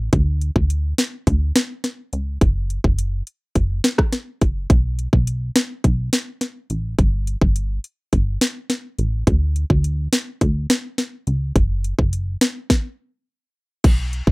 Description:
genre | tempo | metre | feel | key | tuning
dancehall | 105 BPM | 4/4 | straight | B minor | A4 = 440 Hz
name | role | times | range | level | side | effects
plucky analog bass | bass | 0.0-14.3 s | F#1 to D2 | -20 LUFS | equal | none
island pop drum kit | drums | 0.1-14.3 s | crash cymbal, hi-hat, kick drum, rim click, snare drum | -17 LUFS | equal | overdrive
room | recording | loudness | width
light reverb | rough home demo mix | -18 LUFS | side -27 dB against mid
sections
0.0-13.8 A section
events
stop 12.7-13.8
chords
none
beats
| 0.13 0.70 1.27 1.84 | 2.41 2.98 3.56 4.13 | 4.70 5.27 5.84 6.41 | 6.99 7.56 8.13 8.70 | 9.27 9.84 10.41 10.98 | 11.56 12.13 12.70 13.27 | 13.84

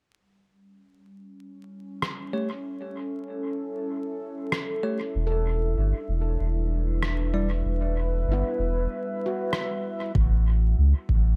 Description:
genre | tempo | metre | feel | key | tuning
ambient dub | 96 BPM | 4/4 | swing 57% on 16ths | unclear | A4 = 441 Hz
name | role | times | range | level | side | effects
warbly tape-like pad | sustained chords | 1.2-11.4 s | G3 to E5 | -35 LUFS | equal | chorus, built-in reverb, phaser
electronic rim click | drums | 2.0-9.7 s | none | -34 LUFS | equal | dub echo
bell-like tine electric piano | stabs | 2.3-7.5 s | G3 to D5 | -36 LUFS | equal | low-pass filter, dub echo
soft dub sub bass | bass | 5.1-11.4 s | E1 to C#2 | -25 LUFS | equal | tube saturation
handpan | arpeggios | 5.3-10.6 s | B3 to A4 | -38 LUFS | equal | dub echo
electronic kick drum | drums | 10.2-11.2 s | none | -28 LUFS | equal | none
room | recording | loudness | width
light reverb | vinyl crackle | -27 LUFS | mono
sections
0.2-10.2 A section; 10.2-11.4 B section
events
break 8.9-10.2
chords
0.2 A7; 5.2 Em7; 10.2 A7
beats
| 0.15 0.78 1.40 2.03 | 2.65 3.28 3.90 4.53 | 5.15 5.78 6.40 7.03 | 7.65 8.28 8.90 9.53 | 10.15 10.78

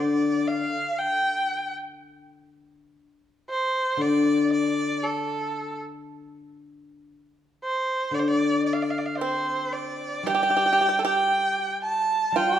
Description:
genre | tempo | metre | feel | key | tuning
chinese traditional, Chinese chamber ensemble | 58 BPM | 4/4 | rubato | D yu mode | A4 = 440 Hz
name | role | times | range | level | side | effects
clear erhu | melody | 0.0-12.6 s | A4 to A5 | -24 LUFS | right 1 dB | none
guzheng | accompaniment | 0.0-12.6 s | D3 to G3 | -26 LUFS | left 3 dB | none
pipa | second line | 9.2-12.6 s | C4 to A4 | -27 LUFS | right 5 dB | none
room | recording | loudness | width
wet recital hall reverb, RT60 1.5 s | dark, warm production | -22 LUFS | side -10 dB against mid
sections
0.0-10.3 A section; 10.3-12.6 B section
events
none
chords
none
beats
0.97 | 1.98 2.99 4.00 5.02 | 6.05 7.08 8.13 9.20 | 10.26 11.30 12.35

